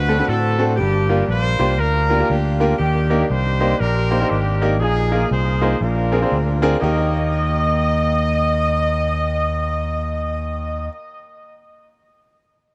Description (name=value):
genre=uptempo gospel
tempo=119 BPM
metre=4/4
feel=swing 61% on 8ths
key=Eb major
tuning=A4 = 437 Hz
part: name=warm horn section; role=melody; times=0.0-10.9 s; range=Bb3 to Eb5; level=-24 LUFS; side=equal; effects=tape echo
part: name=clear grand piano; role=accompaniment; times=0.0-10.9 s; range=Eb2 to C5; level=-25 LUFS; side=equal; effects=tape echo
part: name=fingered electric bass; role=bass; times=0.0-10.9 s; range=G1 to A2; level=-22 LUFS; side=equal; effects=none
room=small room ambience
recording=echo-heavy mix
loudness=-19 LUFS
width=mono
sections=0.0-6.8 A section; 6.8-10.8 B section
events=none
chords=0.0 D7; 0.8 Gm7; 2.8 Ebmaj7; 4.8 Bb7sus4; 5.8 Bb9; 6.8 Eb